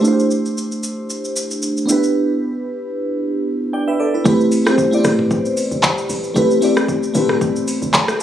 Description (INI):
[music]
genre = amapiano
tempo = 114 BPM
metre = 4/4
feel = swing 55% on 16ths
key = A minor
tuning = A4 = 442 Hz
[part]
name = crystalline FM electric piano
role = accompaniment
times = 0.0-8.2 s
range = A3 to B5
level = -16 LUFS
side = equal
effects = chorus, phaser
[part]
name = smooth R&B drum kit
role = drums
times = 0.0-8.2 s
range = handclaps, hi-hat, kick drum, rim click, shaker, toms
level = -20 LUFS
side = equal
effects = overdrive
[part]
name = deep log drum bass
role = bass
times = 4.3-7.9 s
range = A1 to A2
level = -26 LUFS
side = equal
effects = none
[sound]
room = light reverb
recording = recorded on a phone in the room, studio ambience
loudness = -15 LUFS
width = side -10 dB against mid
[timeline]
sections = 0.0-4.3 A section; 4.3-8.2 B section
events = drop 4.3-8.2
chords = 0.0 D9sus4; 1.9 Em7; 4.3 Am9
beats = | 0.04 0.57 1.10 1.62 | 2.15 2.68 3.20 3.73 | 4.25 4.78 5.31 5.83 | 6.36 6.89 7.41 7.94